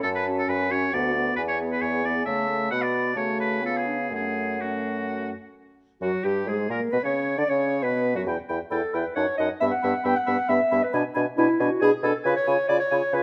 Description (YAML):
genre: quick classical-period movement for wind quintet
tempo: 134 BPM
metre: 3/4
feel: rubato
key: F# minor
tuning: A4 = 441 Hz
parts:
  - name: mellow hollow silver concert flute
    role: melody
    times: 0.0-13.2 s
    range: F#4 to B5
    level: -34 LUFS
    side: equal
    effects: none
  - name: clear oboe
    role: second line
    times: 0.0-13.2 s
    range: F#4 to G#5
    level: -32 LUFS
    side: equal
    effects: none
  - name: mellow clarinet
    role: accompaniment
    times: 0.0-13.2 s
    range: C#4 to G5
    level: -29 LUFS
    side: equal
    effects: none
  - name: warm French horn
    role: accompaniment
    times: 0.0-13.2 s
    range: F#3 to E#4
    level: -32 LUFS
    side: equal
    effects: none
  - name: warm bassoon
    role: bass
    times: 0.0-13.2 s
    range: D2 to D3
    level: -31 LUFS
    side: equal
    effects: none
room: moderate scoring stage reverb, RT60 1.6 s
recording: close, detailed microphones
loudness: -25 LUFS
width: mono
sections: 0.0-5.6 A section; 5.6-13.2 B section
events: none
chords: 0.0 F#m; 0.9 Bm/D; 1.4 E; 2.3 A/C#; 2.7 Bm; 3.2 F#m/C#; 3.6 C#7; 4.1 F#m; 5.6 N.C.; 6.5 G#sus2; 6.9 Bm; 8.3 Em; 9.2 D#m/F#; 9.6 Em/G; 10.9 G#dim/B; 12.3 C#7